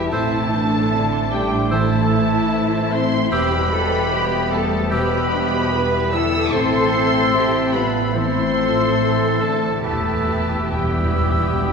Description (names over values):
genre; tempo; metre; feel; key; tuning
cinematic; 74 BPM; 4/4; rubato; A minor; A4 = 441 Hz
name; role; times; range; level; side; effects
muted studio violin section; melody; 0.0-11.7 s; E5 to E6; -24 LUFS; left 1 dB; none
mellow clarinet; second line; 0.0-11.7 s; E4 to E5; -27 LUFS; right 1 dB; none
muted studio violin section; second line; 0.0-11.7 s; D4 to C5; -29 LUFS; left 2 dB; none
muted studio viola section; accompaniment; 0.0-11.7 s; C3 to C4; -26 LUFS; right 2 dB; none
dark French horn section; sustained chords; 0.0-11.7 s; B2 to E4; -24 LUFS; left 3 dB; none
concert harp; arpeggios; 0.0-11.7 s; E2 to E6; -28 LUFS; left 8 dB; none
muted studio cello section; bass; 0.0-11.7 s; C4 to B4; -26 LUFS; right 2 dB; none
muted studio double bass section; bass; 0.0-11.7 s; E1 to A1; -25 LUFS; right 4 dB; none
clear oboe; second line; 0.1-11.7 s; G4 to C5; -30 LUFS; right 2 dB; none
concert flute; second line; 0.1-11.7 s; E6; -28 LUFS; right 1 dB; none
timpani; percussion; 9.8-11.7 s; E2; -23 LUFS; equal; none
room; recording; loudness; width
wet scoring stage reverb, RT60 1.6 s; recorded in a church or concert hall; -16 LUFS; side -5 dB against mid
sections
0.0-11.7 A section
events
timpani fill 9.8-11.7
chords
0.1 Am; 3.3 Em; 6.5 Am; 9.8 Em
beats
| 0.12 0.92 1.71 2.52 | 3.32 4.12 4.92 5.73 | 6.53 7.35 8.16 8.99 | 9.85 10.72 11.58